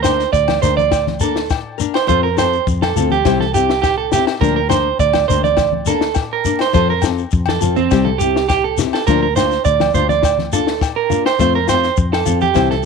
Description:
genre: highlife guitar band.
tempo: 103 BPM.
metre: 4/4.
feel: straight.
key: F major.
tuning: A4 = 440 Hz.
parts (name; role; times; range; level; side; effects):
nylon-string guitar; accompaniment; 0.0-12.9 s; E3 to Bb4; -20 LUFS; left 14 dB; none.
electric guitar at the edge of break-up; arpeggios; 0.0-12.8 s; C4 to D5; -16 LUFS; right 12 dB; slapback echo.
fingered electric bass; bass; 0.0-12.9 s; C2 to F2; -22 LUFS; left 2 dB; none.
compact cocktail drum kit; drums; 0.0-12.8 s; kick drum, snare drum; -21 LUFS; left 5 dB; none.
agogo bells; percussion; 0.0-12.7 s; none; -27 LUFS; left 14 dB; none.
shekere; percussion; 0.0-12.7 s; none; -23 LUFS; left 6 dB; none.
congas; percussion; 0.5-12.8 s; none; -25 LUFS; left 12 dB; none.
room: light reverb, small room ambience.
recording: 1960s-style stereo with parts hard left and right.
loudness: -13 LUFS.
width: side -5 dB against mid.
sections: 0.0-12.9 A section.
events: none.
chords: 0.0 Bb/D; 2.1 F; 3.3 C; 4.4 Bb/D; 6.7 F; 7.9 C; 9.1 Bb/D; 11.4 F.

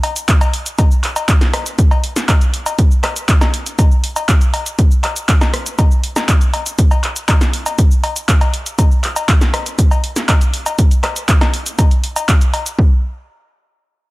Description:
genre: house.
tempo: 120 BPM.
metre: 4/4.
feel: straight.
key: none.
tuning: none.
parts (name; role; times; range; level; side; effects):
punchy analog drum machine; drums; 0.0-12.8 s; cowbell, handclaps, hi-hat, rim click, shaker, snare drum; -18 LUFS; equal; none.
electronic kick drum; drums; 0.3-12.9 s; none; -12 LUFS; equal; none.
room: little or no reverb.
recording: none.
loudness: -12 LUFS.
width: side -20 dB against mid.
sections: 0.0-12.8 A section; 12.8-14.1 B section.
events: none.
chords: none.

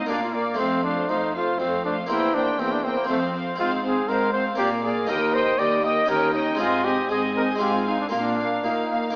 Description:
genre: classical, baroque-style concerto movement with solo episodes.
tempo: 120 BPM.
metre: 3/4.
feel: straight.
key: unclear.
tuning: A4 = 440 Hz.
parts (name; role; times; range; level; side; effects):
warm chamber violin section; melody; 0.0-9.1 s; F5 to Ab5; -35 LUFS; equal; none.
warm trumpet; melody; 0.0-9.2 s; A3 to Eb5; -27 LUFS; equal; none.
warm studio violin section; second line; 0.0-9.1 s; C5 to F5; -31 LUFS; equal; none.
harpsichord; accompaniment; 0.0-9.2 s; Eb2 to F4; -31 LUFS; equal; none.
rich chamber viola section; accompaniment; 0.0-9.1 s; A3 to Db4; -32 LUFS; equal; none.
warm chamber cello section; bass; 0.0-9.1 s; Eb2 to Bb2; -34 LUFS; equal; none.
room: moderate recital hall reverb, RT60 1.5 s.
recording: AM radio sound.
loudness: -23 LUFS.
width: mono.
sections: 0.0-9.2 A section.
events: none.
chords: 0.1 Bb; 0.6 F; 2.1 C7/E; 3.1 F5; 3.6 Fm/Ab; 4.6 Bb; 5.1 Eb; 6.1 Eb7; 6.6 Ab; 7.6 Fm/Ab; 8.1 Bbsus4.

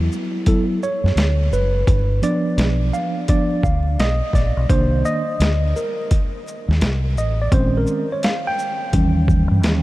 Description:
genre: hip hop, jazz-hop.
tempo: 85 BPM.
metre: 4/4.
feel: swing 65% on 16ths.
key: unclear.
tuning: A4 = 439 Hz.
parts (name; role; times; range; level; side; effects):
mellow tine electric piano; accompaniment; 0.0-9.8 s; Eb3 to G5; -21 LUFS; right 1 dB; medium stereo tremolo.
deep dub fingered electric bass; bass; 0.0-9.8 s; F#1 to G2; -18 LUFS; equal; none.
boom bap sampler-style drum kit; drums; 0.1-9.8 s; hi-hat, kick drum, shaker, snare drum; -21 LUFS; equal; overdrive.
room: light reverb, digital ambience.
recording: vinyl crackle.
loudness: -16 LUFS.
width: side -17 dB against mid.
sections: 0.0-9.8 A section.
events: tine electric piano solo 0.0-9.8.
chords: 0.0 D6; 1.9 G7 (rootless); 4.7 Cm9; 7.5 Bbm11; 8.9 Eb7b9.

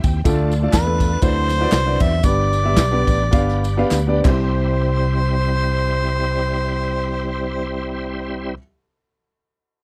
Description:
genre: uptempo gospel.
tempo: 94-125 BPM.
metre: 4/4.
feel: swing 56% on 8ths.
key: C major.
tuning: A4 = 439 Hz.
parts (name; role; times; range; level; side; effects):
warm grand piano; accompaniment; 0.0-8.6 s; C2 to G5; -25 LUFS; equal; none.
bright tonewheel organ; sustained chords; 0.0-8.6 s; F#3 to C5; -30 LUFS; equal; slow rotary speaker, chorus vibrato.
fingered electric bass; bass; 0.0-8.6 s; G1 to E2; -23 LUFS; equal; none.
natural country drum kit; drums; 0.0-4.4 s; crash cymbal, kick drum, ride cymbal, snare drum; -21 LUFS; equal; none.
tambourine and handclaps; percussion; 0.0-4.8 s; none; -35 LUFS; equal; none.
mellow harmonica; melody; 0.7-8.6 s; B4 to E5; -26 LUFS; equal; none.
room: little or no reverb.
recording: dry, close 1970s-style studio recording.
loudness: -19 LUFS.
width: mono.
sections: 0.0-4.5 A section; 4.5-9.6 B section.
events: slowing down 0.3-4.5; drum fill 3.9-4.5.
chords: 0.3 Dm; 1.2 D13; 2.2 G; 4.2 C.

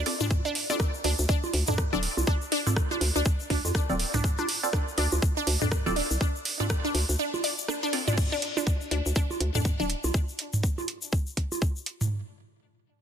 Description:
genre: minimal techno.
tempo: 122 BPM.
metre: 4/4.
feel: swing 59% on 16ths.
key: D minor.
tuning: A4 = 439 Hz.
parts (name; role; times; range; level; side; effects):
hollow knocking FM bass; bass; 0.0-10.1 s; D1 to F2; -27 LUFS; equal; sidechain pumping.
filtered dub chord stab; stabs; 0.1-8.0 s; C4 to D5; -35 LUFS; right 2 dB; phaser, lush chorus, digital delay.
garage drum kit; drums; 0.1-12.0 s; crash cymbal, hi-hat, rim click; -32 LUFS; right 2 dB; overdrive.
resonant blip pluck; riff; 0.2-9.8 s; D4 to D5; -31 LUFS; left 1 dB; phaser, sidechain pumping, tape echo.
egg shaker; percussion; 0.2-12.1 s; none; -37 LUFS; left 5 dB; none.
electronic toms and bongos; percussion; 0.2-12.1 s; none; -32 LUFS; right 2 dB; none.
electronic kick drum; drums; 0.3-11.7 s; none; -26 LUFS; equal; none.
room: light reverb.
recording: dense, heavily limited modern master.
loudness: -25 LUFS.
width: side -8 dB against mid.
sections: 0.0-8.2 A section; 8.2-12.1 B section.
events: drop 0.0-8.2.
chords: none.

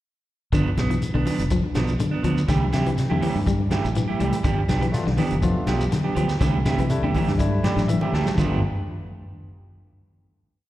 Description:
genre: afrobeat.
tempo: 122 BPM.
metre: 4/4.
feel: straight.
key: G mixolydian.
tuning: A4 = 444 Hz.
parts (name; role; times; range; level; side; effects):
electric guitar at the edge of break-up; arpeggios; 0.5-8.5 s; G2 to G3; -28 LUFS; left 4 dB; slapback echo.
electric guitar at the edge of break-up; stabs; 0.5-8.6 s; E3 to G4; -27 LUFS; right 4 dB; slapback echo.
fingered electric bass; bass; 0.5-8.6 s; F1 to C3; -24 LUFS; equal; none.
vintage drum kit; drums; 0.5-8.5 s; hi-hat, kick drum, snare drum, toms; -28 LUFS; equal; none.
congas; percussion; 0.5-8.5 s; none; -28 LUFS; left 1 dB; none.
shekere; percussion; 0.5-8.5 s; none; -32 LUFS; left 1 dB; none.
barky tine electric piano; accompaniment; 4.9-8.6 s; G3 to A5; -31 LUFS; left 2 dB; medium stereo tremolo, slapback echo.
room: studio reverb.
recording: live gig heard through the venue's PA, recital hall reverb.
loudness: -20 LUFS.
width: side -14 dB against mid.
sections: 0.5-8.4 groove; 8.4-10.4 final chord.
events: tine electric piano fill 7.4-8.4; drum fill 7.8-8.4.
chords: 0.5 G7 (rootless); 2.5 C6; 4.5 G7; 6.4 C6; 8.4 G7.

